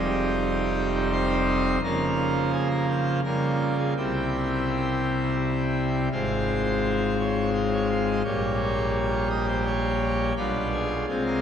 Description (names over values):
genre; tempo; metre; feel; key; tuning
classical, chorale-style piece for pipe organ; 84 BPM; 3/4; straight; unclear; A4 = 440 Hz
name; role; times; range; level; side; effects
pipe organ, full organ; solo; 0.0-11.4 s; F1 to F5; -23 LUFS; equal; none
room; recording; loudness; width
wet cathedral reverb, RT60 5.8 s; none; -23 LUFS; side -8 dB against mid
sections
0.0-11.4 A section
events
none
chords
0.0 Cm/F; 1.8 Bbm/Db; 3.2 Gm7b5/Db; 4.0 C; 6.1 Fm/Ab; 8.3 Gdim/Bb; 10.4 G7/B